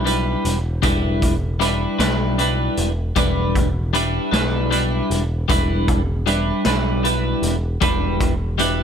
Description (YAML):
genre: psychedelic rock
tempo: 52 BPM (dotted quarters)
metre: 6/8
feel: straight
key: E minor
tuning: A4 = 440 Hz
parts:
  - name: twelve-string electric guitar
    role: riff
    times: 0.0-8.8 s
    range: G3 to B4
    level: -20 LUFS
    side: equal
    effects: tremolo, double-tracked left and right
  - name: overdriven picked electric bass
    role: bass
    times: 0.0-8.8 s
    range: E1 to B1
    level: -22 LUFS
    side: equal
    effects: none
  - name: raw garage drum kit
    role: drums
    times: 0.1-8.8 s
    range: hi-hat, kick drum, snare drum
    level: -24 LUFS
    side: equal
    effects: none
room: studio ambience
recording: none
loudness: -17 LUFS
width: side -8 dB against mid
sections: 0.0-8.8 A section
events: none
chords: 0.0 Em7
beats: | 0.84 2.00 | 3.17 4.33 | 5.49 6.65 | 7.82